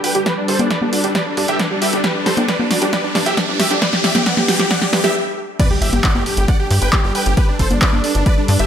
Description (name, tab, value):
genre	uplifting trance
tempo	135 BPM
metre	4/4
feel	straight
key	G major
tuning	A4 = 440 Hz
part	supersaw chords	melody	0.0-8.7 s	D4 to G5	-21 LUFS	right 1 dB	sidechain pumping, low-pass filter, dub echo
part	dark grand piano	second line	0.0-8.7 s	D4 to G5	-27 LUFS	equal	sidechain pumping, low-pass filter, digital delay
part	lush unison pad	sustained chords	0.0-8.7 s	G3 to B4	-26 LUFS	left 1 dB	chorus, sidechain pumping
part	wide unison pluck	arpeggios	0.0-5.1 s	F#4 to G5	-23 LUFS	right 2 dB	sidechain pumping, digital delay
part	punchy analog drum machine	drums	0.0-8.7 s	congas, crash cymbal, handclaps, hi-hat, snare drum	-19 LUFS	equal	overdrive, sidechain pumping on perc, small room ambience, sidechain pumping on hats, sidechain pumping on cymbals
part	riser and impact	sound effects	0.4-7.4 s	none	-25 LUFS	left 1 dB	none
part	tight sequencer bass	bass	0.2-8.7 s	G1 to G2	-21 LUFS	equal	sidechain pumping, high-pass filter
part	electronic kick drum	drums	0.3-8.4 s	none	-17 LUFS	equal	overdrive, high-pass filter on kick, small room ambience
room	moderate digital room reverb, RT60 1.1 s, digital ambience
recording	none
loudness	-14 LUFS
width	side -9 dB against mid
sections	0.0-5.6 A section; 5.6-8.7 B section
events	build-up 0.0-5.6; drum fill 0.0-5.2; filter sweep on synth pluck 0.0-5.6; riser 0.4-5.2; stop 5.2-5.6; drop 5.6-8.7; impact 5.6-7.4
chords	0.0 Gadd9